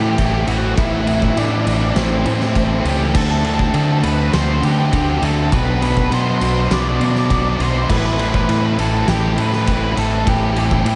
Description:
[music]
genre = post-rock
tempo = 101 BPM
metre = 4/4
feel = straight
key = A dorian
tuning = A4 = 440 Hz
[part]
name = octave-fuzz lead guitar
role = melody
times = 0.0-10.9 s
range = C4 to D5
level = -24 LUFS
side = equal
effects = distortion, diffuse ambient delay
[part]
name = pedal steel guitar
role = sustained chords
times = 0.0-11.0 s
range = none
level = barely audible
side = none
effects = none
[part]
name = overdriven electric guitar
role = riff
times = 0.0-11.0 s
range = A2 to F#4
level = -26 LUFS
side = equal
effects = none
[part]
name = sludgy distorted guitar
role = riff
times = 0.0-11.0 s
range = A2 to D4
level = -24 LUFS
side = equal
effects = overdrive
[part]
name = modern bright fingered electric bass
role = bass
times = 0.0-11.0 s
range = A1 to D3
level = -22 LUFS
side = equal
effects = none
[part]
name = oversized low-tuned drum kit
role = drums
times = 0.2-11.0 s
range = crash cymbal, kick drum, ride cymbal, snare drum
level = -24 LUFS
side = equal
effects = none
[sound]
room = wet cathedral reverb, RT60 6.1 s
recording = dreamy mix soaked in reverb, nothing above 10.3 kHz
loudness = -17 LUFS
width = mono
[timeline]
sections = 0.0-11.0 A section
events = none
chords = 0.0 Am7; 3.1 D7sus4; 5.5 Bm7; 7.9 Am7

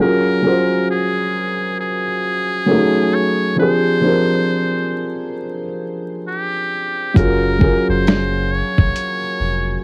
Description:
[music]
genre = lo-fi hip hop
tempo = 67 BPM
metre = 4/4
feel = swing 61% on 16ths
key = unclear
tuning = A4 = 441 Hz
[part]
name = trumpet with metal mute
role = melody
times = 0.0-9.8 s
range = G4 to Db5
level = -24 LUFS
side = equal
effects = low-pass filter, cassette tape
[part]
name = felt-muted upright piano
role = accompaniment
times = 0.0-9.8 s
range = F3 to C5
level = -20 LUFS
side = equal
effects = cassette tape, low-pass filter
[part]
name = soft dub sub bass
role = bass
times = 7.2-9.8 s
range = F1 to Gb1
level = -24 LUFS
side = equal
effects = none
[part]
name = dusty soul sampler-style drum kit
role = drums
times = 7.2-9.2 s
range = finger snaps, hi-hat, kick drum, snare drum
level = -17 LUFS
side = equal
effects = overdrive, cassette tape
[sound]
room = light reverb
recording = home recording on cassette, vinyl crackle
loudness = -18 LUFS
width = mono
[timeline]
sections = 0.0-9.8 A section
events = none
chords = 0.0 Gbmaj9; 2.7 Gbm69; 3.6 Fm69; 7.2 Gbmaj9

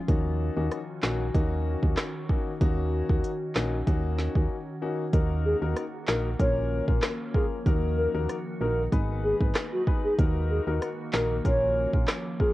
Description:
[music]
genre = dancehall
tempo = 95 BPM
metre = 4/4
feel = straight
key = Eb minor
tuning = A4 = 440 Hz
[part]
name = glassy FM pad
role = sustained chords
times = 0.0-12.5 s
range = Eb3 to Cb5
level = -37 LUFS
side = right 1 dB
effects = ensemble chorus, built-in reverb, sidechain pumping, cassette tape
[part]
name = warm concert grand piano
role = accompaniment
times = 0.1-12.5 s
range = Bb3 to Cb5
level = -33 LUFS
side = left 5 dB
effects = sidechain pumping, cassette tape
[part]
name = solid FM bass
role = bass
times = 0.1-12.1 s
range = Ab1 to Eb2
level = -28 LUFS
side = right 1 dB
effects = none
[part]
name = deep house drum kit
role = drums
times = 0.1-12.5 s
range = handclaps, hi-hat, kick drum, rim click, snare drum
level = -26 LUFS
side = equal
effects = cassette tape
[part]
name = hollow clarinet-like synth lead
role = melody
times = 5.5-12.5 s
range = Gb4 to Db5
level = -28 LUFS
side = equal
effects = chorus, cassette tape
[sound]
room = little or no reverb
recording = home recording on cassette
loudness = -24 LUFS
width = side -17 dB against mid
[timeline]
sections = 0.0-5.1 A section; 5.1-12.5 B section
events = break 4.5-5.1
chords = 0.1 Ebm7; 5.1 Ebm; 6.4 Bbm; 7.7 Ebm; 8.9 Abm; 10.2 Ebm; 11.4 Bbm

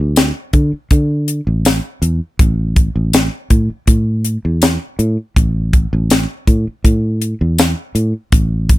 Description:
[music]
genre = straight-eighth soul blues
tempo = 81 BPM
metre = 4/4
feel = swing 54% on 16ths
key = unclear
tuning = A4 = 442 Hz
[part]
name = fingered electric bass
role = bass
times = 0.0-8.8 s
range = A1 to D3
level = -15 LUFS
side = equal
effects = none
[part]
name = tight funk drum kit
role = drums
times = 0.2-8.8 s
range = hi-hat, kick drum, snare drum, tambourine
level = -12 LUFS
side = equal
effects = none
[sound]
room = little or no reverb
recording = none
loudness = -13 LUFS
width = side -17 dB against mid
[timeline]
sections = 0.0-8.8 A section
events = none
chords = none

